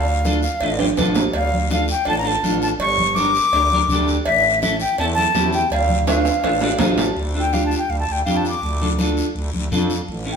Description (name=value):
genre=latin, cumbia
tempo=165 BPM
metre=4/4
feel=straight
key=D harmonic minor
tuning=A4 = 440 Hz
part: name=reedy concert flute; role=melody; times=0.0-10.4 s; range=E5 to D6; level=-20 LUFS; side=left 1 dB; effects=none
part: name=growling FM bass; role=bass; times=0.0-10.4 s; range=G1 to F2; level=-24 LUFS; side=right 1 dB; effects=none
part: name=guiro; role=percussion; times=0.2-10.4 s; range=none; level=-32 LUFS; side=left 4 dB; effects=none
part: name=clean electric guitar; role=accompaniment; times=0.3-10.3 s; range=C#4 to A5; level=-23 LUFS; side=equal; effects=none
part: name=congas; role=percussion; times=0.3-10.3 s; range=none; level=-26 LUFS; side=left 2 dB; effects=none
part: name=cowbell and timbales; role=percussion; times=0.6-7.1 s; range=none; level=-25 LUFS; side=right 4 dB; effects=none
room=wet stone room reverb, RT60 1.3 s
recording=band playing live in one room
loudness=-16 LUFS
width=side -6 dB against mid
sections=0.0-7.2 A section; 7.2-10.4 B section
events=drum fill 0.8-1.3, 6.1-7.2; clean electric guitar fill 6.4-7.2; flute solo 7.2-10.4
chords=0.0 Dm; 2.8 Gm; 4.3 A7; 5.7 Dm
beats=0.26 0.62 0.98 | 1.35 1.71 2.07 2.44 | 2.80 3.17 3.53 3.89 | 4.26 4.62 4.99 5.35 | 5.71 6.08 6.44 6.80 | 7.17 7.53 7.90 8.26 | 8.63 8.99 9.36 9.72 | 10.09